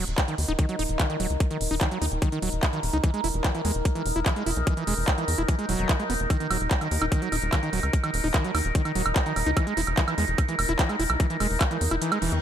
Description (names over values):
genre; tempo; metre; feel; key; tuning
psychedelic trance; 147 BPM; 4/4; straight; Eb phrygian; A4 = 440 Hz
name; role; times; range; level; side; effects
overtone-sweeping drone; sustained chords; 0.4-12.4 s; Eb4 to Bb4; -31 LUFS; equal; chorus, built-in reverb, phaser, sidechain pumping
overdriven acid bass; riff; 0.0-12.4 s; Eb3 to E4; -30 LUFS; right 1 dB; auto-pan, sidechain pumping, tape echo
tight sequencer bass; bass; 0.0-12.4 s; Eb1 to E2; -28 LUFS; equal; none
techno drum kit; drums; 0.1-12.4 s; handclaps, hi-hat, woodblock; -30 LUFS; right 2 dB; none
electronic kick drum; drums; 0.2-11.7 s; none; -24 LUFS; equal; overdrive
reverse cymbal; sound effects; 12.2-12.4 s; none; -45 LUFS; left 5 dB; none
room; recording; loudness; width
light reverb, digital ambience; none; -23 LUFS; side -10 dB against mid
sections
0.0-12.4 A section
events
kick drops out 12.0-12.4; reverse cymbal 12.2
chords
0.0 Eb5; 3.0 E5; 6.3 Eb5; 9.6 E5